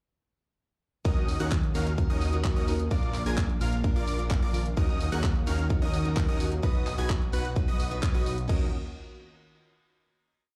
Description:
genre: EDM, festival progressive house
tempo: 129 BPM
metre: 4/4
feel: straight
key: Eb minor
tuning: A4 = 440 Hz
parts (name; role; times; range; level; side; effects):
- picked plugged-in steel-string acoustic guitar; accompaniment; 1.0-8.7 s; Bb2 to B4; -39 LUFS; equal; sidechain pumping, delay
- lush unison pad; sustained chords; 1.1-8.7 s; Eb3 to F5; -42 LUFS; equal; none
- unison lead; arpeggios; 1.1-8.7 s; D6 to Ab6; -42 LUFS; equal; sidechain pumping, delay
- supersaw stab; riff; 1.1-8.7 s; Db4 to Ab5; -39 LUFS; equal; sidechain pumping, delay
- fat analog bass; bass; 1.1-8.7 s; Bb1 to Eb2; -33 LUFS; equal; sidechain pumping
- electronic kick drum; drums; 1.1-8.6 s; none; -29 LUFS; equal; overdrive
- house drum kit; drums; 1.1-8.6 s; crash cymbal, handclaps, hi-hat; -42 LUFS; equal; none
room: little or no reverb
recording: played on a big sound system in a bare room, large studio reverb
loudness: -28 LUFS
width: mono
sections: 1.1-8.5 drop; 8.5-10.4 final chord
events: drop 1.1-8.5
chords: 1.1 Ebm7; 2.9 Bb; 4.8 Ebm7; 6.6 B; 8.5 Ebm7

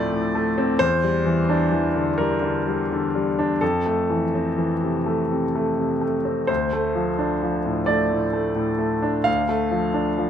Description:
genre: neoclassical minimalist piano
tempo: 43 BPM (dotted quarters)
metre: 6/8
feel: rubato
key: D minor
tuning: A4 = 441 Hz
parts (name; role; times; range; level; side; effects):
- bright grand piano; solo; 0.0-10.3 s; D2 to F5; -20 LUFS; equal; none
room: light reverb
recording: close, detailed microphones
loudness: -20 LUFS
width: side -9 dB against mid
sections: 0.0-10.3 A section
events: none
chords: 0.0 Dm7; 0.8 Em7b5; 3.6 Fmaj7; 6.5 Dm7

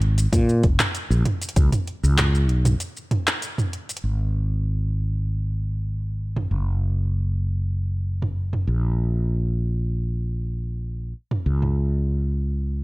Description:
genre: sunset chillout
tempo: 97 BPM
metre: 4/4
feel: straight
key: unclear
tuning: A4 = 440 Hz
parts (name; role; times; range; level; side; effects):
- mellow fretless electric bass; bass; 0.0-12.8 s; F1 to Bb2; -21 LUFS; equal; none
- deep house drum kit; drums; 0.0-11.7 s; handclaps, hi-hat, shaker, toms; -24 LUFS; right 1 dB; studio reverb
- electronic kick drum; drums; 0.3-1.7 s; none; -20 LUFS; equal; studio reverb
room: little or no reverb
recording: none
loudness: -21 LUFS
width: side -22 dB against mid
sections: 0.0-4.0 A section; 4.0-12.8 B section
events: break 2.8-4.0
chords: none

